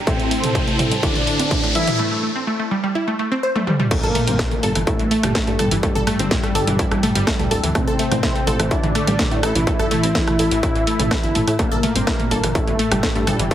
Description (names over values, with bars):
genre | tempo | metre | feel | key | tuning
melodic techno | 125 BPM | 4/4 | straight | unclear | A4 = 440 Hz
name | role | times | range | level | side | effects
warm analog pad | sustained chords | 0.0-2.0 s | E4 to A5 | -29 LUFS | right 1 dB | chorus, sidechain pumping
wide unison pluck | arpeggios | 0.0-13.5 s | E3 to A5 | -23 LUFS | equal | sidechain pumping, dub echo
plucky analog bass | bass | 0.0-13.5 s | D1 to A2 | -24 LUFS | equal | sidechain pumping, high-pass filter
riser and impact | sound effects | 0.0-5.8 s | none | -26 LUFS | equal | none
wide unison lead | melody | 0.1-13.5 s | G3 to E4 | -24 LUFS | equal | ensemble chorus, sidechain pumping, digital delay
airy dreamy lead | second line | 0.1-13.5 s | G2 to E3 | -28 LUFS | equal | none
electronic kick drum | drums | 0.1-13.5 s | none | -22 LUFS | equal | distortion
techno drum kit | drums | 0.1-13.5 s | crash cymbal, hi-hat, rim click, snare drum, toms | -23 LUFS | equal | sidechain pumping on hats, sidechain pumping on toms, sidechain pumping on cymbals
room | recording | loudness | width
moderate digital room reverb, RT60 1.2 s, digital ambience | heavily compressed radio sound, multiband compression | -16 LUFS | side -11 dB against mid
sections
0.0-3.9 A section; 3.9-13.5 B section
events
build-up 0.0-3.9; riser 0.0-2.0; filter sweep on synth pluck 0.0-3.9; drum fill 0.1-2.0, 3.6-3.9; break 2.0-3.9; drop 3.9-13.5; impact 3.9-5.8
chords
0.1 Am; 3.9 Gm; 7.8 Am